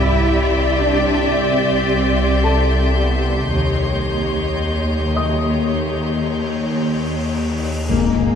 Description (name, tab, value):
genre	cinematic, suspense film score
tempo	55 BPM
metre	4/4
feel	straight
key	unclear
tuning	A4 = 440 Hz
part	rich studio violin section	melody	0.0-7.7 s	D#5 to E5	-28 LUFS	left 4 dB	none
part	rich symphonic violin section	second line	0.0-8.4 s	D#4 to D5	-24 LUFS	left 1 dB	none
part	clear studio viola section	accompaniment	0.0-8.4 s	A#3 to G4	-25 LUFS	left 1 dB	none
part	rich studio cello section	bass	0.0-8.4 s	G#2 to E4	-25 LUFS	right 2 dB	none
part	warm studio double bass section	bass	0.0-8.4 s	G#1 to D#2	-21 LUFS	right 1 dB	none
part	organ-like drone	drone	0.0-8.4 s	G#1 to D#2	-23 LUFS	left 2 dB	ensemble chorus, built-in reverb
part	clear studio violin section	texture	0.0-7.3 s	C6 to G6	-30 LUFS	left 4 dB	none
part	felt-muted upright piano	texture	0.0-7.9 s	A4 to E6	-29 LUFS	left 3 dB	none
part	cymbal swell and impact	sound effects	6.0-8.4 s	none	-29 LUFS	left 2 dB	none
part	mellow French horn section	sustained chords	7.9-8.4 s	G#3 to A#3	-19 LUFS	left 9 dB	none
part	timpani	percussion	7.9-8.4 s	G#2	-24 LUFS	left 3 dB	none
room	moderate scoring stage reverb, RT60 1.5 s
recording	dark, warm production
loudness	-16 LUFS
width	side -7 dB against mid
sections	0.0-7.9 A section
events	cymbal swell 6.0-7.9; impact 7.9-8.4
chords	0.0 Cadd9; 3.5 D#7